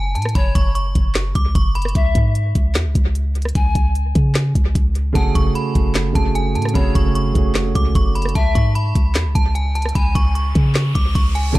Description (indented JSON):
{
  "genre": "hip hop, trap",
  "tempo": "150 BPM",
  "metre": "4/4",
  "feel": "half-time",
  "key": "unclear",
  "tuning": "A4 = 441 Hz",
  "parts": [
    { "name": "metallic FM bell", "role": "melody", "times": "0.0-1.9, 5.2-11.6 s", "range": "G#5 to D6", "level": "-26 LUFS", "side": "right 1 dB", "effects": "chorus, analog delay" },
    { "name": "warm 808-style bass", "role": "bass", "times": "0.0-11.6 s", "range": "F#1 to C#3", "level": "-18 LUFS", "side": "equal", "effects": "none" },
    { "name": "trap drum kit", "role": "drums", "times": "0.2-11.6 s", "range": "handclaps, hi-hat, kick drum, rim click, snare drum", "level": "-18 LUFS", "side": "equal", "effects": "none" },
    { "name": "breathy pan flute", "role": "second line", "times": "0.4-11.6 s", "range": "C#5 to G#5", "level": "-29 LUFS", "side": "left 7 dB", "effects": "analog delay" },
    { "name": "dark grand piano", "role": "accompaniment", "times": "5.1-8.4, 11.5-11.6 s", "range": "C#3 to G#4", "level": "-21 LUFS", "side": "right 4 dB", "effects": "analog delay" },
    { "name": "riser", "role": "sound effects", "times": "9.5-11.6 s", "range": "none", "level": "-33 LUFS", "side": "equal", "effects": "none" },
    { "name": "muted studio string section", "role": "sustained chords", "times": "11.6 s", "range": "F#3 to G#4", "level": "-30 LUFS", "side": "equal", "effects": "none" }
  ],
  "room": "small room ambience",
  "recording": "echo-heavy mix",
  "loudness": "-15 LUFS",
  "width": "side -18 dB against mid",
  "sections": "0.0-11.6 A section",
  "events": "break 0.0-5.2; riser 9.5-11.6",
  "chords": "0.0 F#5; 2.0 C#5; 5.2 F#madd9; 8.4 C#5"
}